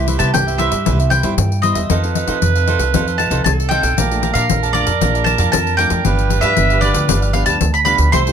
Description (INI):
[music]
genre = samba and choro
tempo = 116 BPM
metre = 4/4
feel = straight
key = unclear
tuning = A4 = 441 Hz
[part]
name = mandolin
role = melody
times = 0.0-8.2 s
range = D5 to C6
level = -19 LUFS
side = equal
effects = none
[part]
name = bright clarinet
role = second line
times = 0.0-8.3 s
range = G4 to C5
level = -22 LUFS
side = right 11 dB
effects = none
[part]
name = cavaquinho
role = accompaniment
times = 0.0-8.3 s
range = D4 to A5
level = -24 LUFS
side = right 8 dB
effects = none
[part]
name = nylon-string guitar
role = accompaniment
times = 0.0-8.3 s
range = F2 to A4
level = -24 LUFS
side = left 5 dB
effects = none
[part]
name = upright bass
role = bass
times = 0.0-8.3 s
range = G1 to F3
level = -18 LUFS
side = right 1 dB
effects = none
[part]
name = pandeiro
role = percussion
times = 0.1-8.3 s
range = none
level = -21 LUFS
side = left 8 dB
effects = none
[sound]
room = light reverb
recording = close, detailed microphones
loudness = -13 LUFS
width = side -8 dB against mid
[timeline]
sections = 0.0-8.3 A section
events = none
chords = 0.0 Cmaj7; 1.9 F7; 4.0 Bbmaj7; 6.1 G7